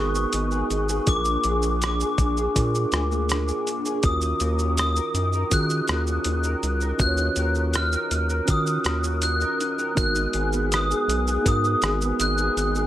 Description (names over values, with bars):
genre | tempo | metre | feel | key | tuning
indie pop, bedroom pop | 81 BPM | 4/4 | straight | G# dorian | A4 = 440 Hz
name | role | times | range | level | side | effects
glockenspiel with hard plastic mallets | melody | 0.0-12.9 s | C#6 to F#6 | -26 LUFS | left 1 dB | ensemble chorus, plate reverb, digital delay
electric guitar through a small old amp | accompaniment | 0.0-12.9 s | G#2 to A#4 | -29 LUFS | equal | analog chorus, vibrato effect, plate reverb
mellow tine electric piano | accompaniment | 0.0-12.9 s | B3 to C#5 | -30 LUFS | right 3 dB | cassette tape, plate reverb
round analog bass | bass | 0.0-12.9 s | G#1 to D#3 | -25 LUFS | equal | none
dusty soul sampler-style drum kit | drums | 0.1-12.9 s | hi-hat, kick drum, rim click, shaker | -26 LUFS | equal | none
room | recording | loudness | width
light reverb | none | -21 LUFS | side -13 dB against mid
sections
0.0-12.9 A section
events
none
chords
0.0 G#m7; 1.1 A#7; 4.0 D#m7; 10.0 G#m7